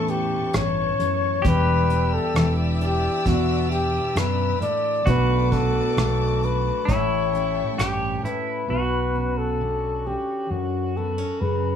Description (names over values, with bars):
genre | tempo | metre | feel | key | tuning
acoustic folk-pop ballad | 66 BPM | 4/4 | straight | unclear | A4 = 441 Hz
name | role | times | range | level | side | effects
breathy flugelhorn | melody | 0.0-11.8 s | F#4 to D5 | -24 LUFS | left 4 dB | none
pedal steel guitar | second line | 0.0-11.8 s | E4 to A4 | -31 LUFS | right 1 dB | none
fingerpicked steel-string acoustic guitar | accompaniment | 0.0-11.8 s | E2 to G4 | -27 LUFS | right 3 dB | none
dark chamber string section | sustained chords | 0.0-8.7 s | A4 to E6 | -34 LUFS | left 1 dB | none
fretless electric bass | bass | 0.0-11.8 s | E1 to A2 | -25 LUFS | equal | none
soft brush drum kit | drums | 0.1-8.5 s | hi-hat, kick drum, rim click | -26 LUFS | equal | none
room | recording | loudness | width
light reverb | studio ambience | -20 LUFS | side -8 dB against mid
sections
0.0-8.7 A section; 8.7-11.8 B section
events
none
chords
0.0 Aadd9; 1.4 Em7; 5.1 Bm7; 6.9 A7; 8.7 Bmadd9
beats
0.54 | 1.45 2.35 3.26 4.17 | 5.07 5.98 6.88 7.79 | 8.70 9.61 10.52 11.42